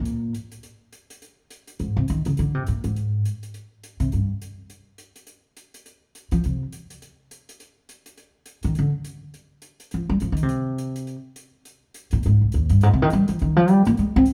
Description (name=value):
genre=modal jazz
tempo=207 BPM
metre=4/4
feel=swing 60% on 8ths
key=G phrygian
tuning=A4 = 441 Hz
part: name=upright bass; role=bass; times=0.0-4.3, 6.3-6.6, 8.6-14.2 s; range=C2 to C4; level=-22 LUFS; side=equal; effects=none
part: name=hi-hat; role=drums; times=0.1-14.3 s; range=none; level=-49 LUFS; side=equal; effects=none
room=wet large studio reverb, RT60 1.0 s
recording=heard from further back in the room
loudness=-22 LUFS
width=mono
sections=0.0-14.3 A section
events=upright bass solo 0.0-14.3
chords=none